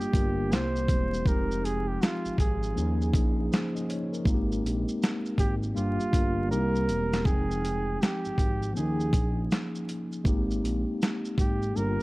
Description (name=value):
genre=lo-fi hip hop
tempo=80 BPM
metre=4/4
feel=swing 63% on 16ths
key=F minor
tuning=A4 = 440 Hz
part: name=warm flugelhorn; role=melody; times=0.0-12.0 s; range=F4 to C5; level=-33 LUFS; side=right 2 dB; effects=low-pass filter, tape echo
part: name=mellow tine electric piano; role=accompaniment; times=0.0-12.0 s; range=F3 to G5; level=-30 LUFS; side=left 1 dB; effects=medium stereo tremolo, cassette tape, low-pass filter
part: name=smooth gliding synth bass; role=bass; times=0.0-12.0 s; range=E1 to Eb2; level=-31 LUFS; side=equal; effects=none
part: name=boom bap sampler-style drum kit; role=drums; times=0.0-12.0 s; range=hi-hat, kick drum, shaker, snare drum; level=-27 LUFS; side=equal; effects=none
room=light reverb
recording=dark, warm production, vinyl crackle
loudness=-25 LUFS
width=side -21 dB against mid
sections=0.0-7.3 A section; 7.3-12.0 B section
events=drum fill 6.5-7.3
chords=0.0 Gm7; 0.5 C7; 1.3 Fm7; 2.8 Eb7sus4; 4.3 Abmaj7; 5.8 Gm7; 6.5 C7; 7.3 Fm7; 8.8 Eb7sus4; 10.3 Abmaj7